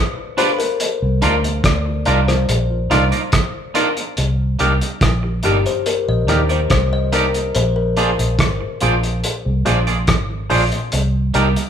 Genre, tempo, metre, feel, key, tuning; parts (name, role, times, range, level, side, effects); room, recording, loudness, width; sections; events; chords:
lovers rock reggae; 71 BPM; 4/4; straight; C minor; A4 = 440 Hz
kalimba; melody; 0.0-9.0 s; G4 to Eb5; -23 LUFS; left 6 dB
barky tine electric piano; accompaniment; 0.4-11.5 s; D4 to C5; -22 LUFS; equal; overdrive, phaser
twangy electric guitar; stabs; 0.4-11.5 s; Bb3 to D5; -23 LUFS; right 5 dB
cloth-damped thuddy drum kit; drums; 0.4-11.7 s; hi-hat, kick drum, rim click; -20 LUFS; equal
vintage muted fingered electric bass; bass; 1.0-11.5 s; G1 to Eb2; -18 LUFS; equal
moderate large studio reverb, RT60 1.2 s; band playing live in one room; -15 LUFS; side -8 dB against mid
0.0-4.2 A section; 4.2-11.7 B section
kalimba solo 4.2-11.7
0.0 G7; 0.8 Cm11; 4.2 Cm9; 7.5 Bb7; 10.9 Cm9